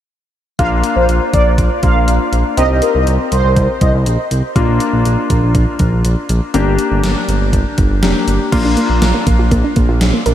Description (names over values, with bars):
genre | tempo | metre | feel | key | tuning
synth-pop | 121 BPM | 4/4 | straight | Bb major | A4 = 439 Hz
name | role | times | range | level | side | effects
mellow synth brass | second line | 0.6-3.9 s | Bb4 to F5 | -18 LUFS | equal | chorus, ping-pong delay
clear concert grand piano | accompaniment | 0.6-10.3 s | Bb3 to G4 | -18 LUFS | left 3 dB | analog chorus
smooth synth bass | bass | 0.6-10.3 s | F1 to C2 | -14 LUFS | equal | none
gated 80s digital drum machine | drums | 0.6-10.3 s | crash cymbal, hi-hat, kick drum, snare drum | -17 LUFS | equal | gated reverb, gated reverb snare, overdrive
soft round pluck | arpeggios | 8.5-10.3 s | Bb3 to Bb4 | -17 LUFS | right 2 dB | chorus, ping-pong delay
room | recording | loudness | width
moderate huge ambient reverb, RT60 5.4 s | dreamy mix soaked in reverb | -11 LUFS | side -11 dB against mid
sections
0.6-8.5 A section; 8.5-10.3 B section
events
none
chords
0.6 Bb; 2.6 Cm; 4.6 Bb; 6.5 Gm; 8.5 Bb